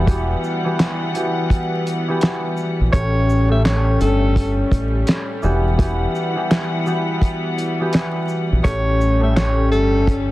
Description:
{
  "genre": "hip hop, boom-bap hip-hop",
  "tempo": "84 BPM",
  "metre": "4/4",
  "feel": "swing 63% on 16ths",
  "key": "E dorian",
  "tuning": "A4 = 440 Hz",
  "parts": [
    { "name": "concert harp", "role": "accompaniment", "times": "0.0-10.3 s", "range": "A2 to G4", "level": "-22 LUFS", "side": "equal", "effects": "cassette tape, high-pass filter, low-pass filter" },
    { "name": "warm studio string section", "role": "sustained chords", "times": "0.0-10.3 s", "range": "E3 to F#5", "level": "-26 LUFS", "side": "left 2 dB", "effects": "high-pass filter, low-pass filter" },
    { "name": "deep dub fingered electric bass", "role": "bass", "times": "0.0-10.3 s", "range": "E1 to A#1", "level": "-18 LUFS", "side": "equal", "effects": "none" },
    { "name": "cloth-damped thuddy drum kit", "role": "drums", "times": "0.1-10.3 s", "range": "handclaps, hi-hat, kick drum, shaker, snare drum", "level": "-19 LUFS", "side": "equal", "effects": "none" },
    { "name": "breathy tenor saxophone", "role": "melody", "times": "2.9-10.3 s", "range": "A4 to E5", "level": "-23 LUFS", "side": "equal", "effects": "high-pass filter, low-pass filter, ping-pong delay" }
  ],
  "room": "small room ambience",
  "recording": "dense, heavily limited modern master, vinyl crackle",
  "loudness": "-16 LUFS",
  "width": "side -17 dB against mid",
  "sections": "0.0-10.3 A section",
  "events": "none",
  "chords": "0.0 Emadd9; 2.9 A7; 5.4 Emadd9; 8.6 A7",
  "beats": "| 0.07 0.79 1.50 2.22 | 2.93 3.65 4.36 5.08 | 5.79 6.50 7.22 7.93 | 8.65 9.36 10.07"
}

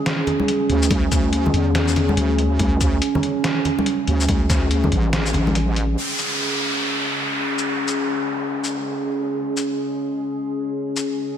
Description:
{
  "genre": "deep dubstep",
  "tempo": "142 BPM",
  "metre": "4/4",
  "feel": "swing 61% on 16ths, half-time",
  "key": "C# phrygian",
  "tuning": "A4 = 444 Hz",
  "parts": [
    { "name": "dark analog pad", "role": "sustained chords", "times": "0.0-11.4 s", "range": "C#4 to G#4", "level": "-23 LUFS", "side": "equal", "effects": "wide subtle chorus" },
    { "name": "trip hop sampler-style drum kit", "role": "drums", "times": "0.1-11.0 s", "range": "hi-hat, shaker, snare drum", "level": "-26 LUFS", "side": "left 1 dB", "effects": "small room ambience" },
    { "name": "congas", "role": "percussion", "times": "0.3-5.5 s", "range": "none", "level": "-25 LUFS", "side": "left 1 dB", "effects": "dub echo" },
    { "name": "wobble bass", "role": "bass", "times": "0.7-6.0 s", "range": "A1 to E2", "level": "-20 LUFS", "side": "equal", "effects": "chorus" },
    { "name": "electronic kick drum", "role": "drums", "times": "0.9-5.0 s", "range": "none", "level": "-21 LUFS", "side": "equal", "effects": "small room ambience" },
    { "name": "downlifter", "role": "sound effects", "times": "6.0-9.4 s", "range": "none", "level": "-24 LUFS", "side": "equal", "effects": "none" }
  ],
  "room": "moderate lush hall reverb, RT60 2.0 s",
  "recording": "dreamy mix soaked in reverb",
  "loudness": "-18 LUFS",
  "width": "side -9 dB against mid",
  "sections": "0.0-6.0 A section; 6.0-11.4 B section",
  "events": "none",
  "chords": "0.0 D5; 6.0 C#5",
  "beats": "0.06 0.48 | 0.91 1.33 1.75 2.17 | 2.60 3.02 3.44 3.86 | 4.29 4.71 5.13 5.55 | 5.98 6.40 6.82 7.24 | 7.67 8.09 8.51 8.93 | 9.36 9.78 10.20 10.62 | 11.05"
}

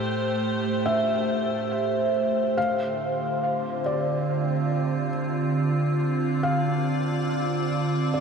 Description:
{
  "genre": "ambient",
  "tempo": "70 BPM",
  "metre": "4/4",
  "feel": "straight",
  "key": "unclear",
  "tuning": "A4 = 440 Hz",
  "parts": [
    { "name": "evolving wavetable pad", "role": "sustained chords", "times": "0.0-8.2 s", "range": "A2 to D5", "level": "-24 LUFS", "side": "right 1 dB", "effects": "phaser, built-in reverb" },
    { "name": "felt-muted upright piano", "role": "arpeggios", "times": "0.0-8.2 s", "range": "D5 to F5", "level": "-29 LUFS", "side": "left 1 dB", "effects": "tape echo" }
  ],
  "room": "wet huge ambient reverb, RT60 8.0 s",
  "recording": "none",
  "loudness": "-23 LUFS",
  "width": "side -6 dB against mid",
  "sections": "0.0-8.2 A section",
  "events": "none",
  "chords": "0.0 Am7; 2.6 Dm7",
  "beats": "0.00 0.85 1.71 | 2.57 3.43 4.28 5.14 | 6.00 6.86 7.71"
}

